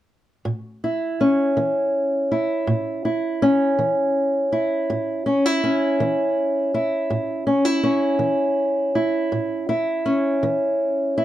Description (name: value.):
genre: blues.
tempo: 54 BPM (dotted quarters).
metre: 12/8.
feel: straight.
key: A major.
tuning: A4 = 439 Hz.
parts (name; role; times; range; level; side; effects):
fingerpicked old ladder-braced acoustic guitar; accompaniment; 0.5-11.2 s; A2 to E4; -19 LUFS; equal; none.
room: moderate studio ambience, RT60 0.5 s.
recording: dark, warm production.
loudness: -19 LUFS.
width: side -13 dB against mid.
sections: 0.5-11.2 A section.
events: none.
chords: 0.5 A.